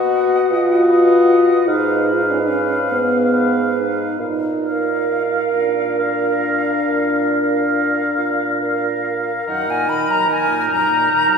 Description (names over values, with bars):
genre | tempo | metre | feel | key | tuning
classical, slow romantic movement for wind quintet | 44-53 BPM (dotted quarters) | 12/8 | rubato | Eb minor | A4 = 440 Hz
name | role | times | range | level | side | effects
bright silver concert flute | melody | 0.0-11.4 s | F5 to Cb6 | -24 LUFS | left 4 dB | none
warm oboe | second line | 0.0-11.4 s | Bb4 to F5 | -22 LUFS | equal | none
mellow French horn | accompaniment | 0.0-11.4 s | Gb2 to F#4 | -18 LUFS | left 2 dB | none
warm clarinet | accompaniment | 0.0-11.4 s | Eb4 to B4 | -23 LUFS | right 6 dB | none
mellow bassoon | bass | 0.0-10.5 s | Ab2 to Eb3 | -23 LUFS | right 3 dB | none
room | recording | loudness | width
wet church reverb, RT60 2.6 s | recorded in a church or concert hall | -15 LUFS | side -6 dB against mid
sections
0.0-9.5 A section; 9.5-11.4 B section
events
none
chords
0.0 B; 1.7 Fdim/Ab; 4.2 Bb; 9.5 Ebm/Gb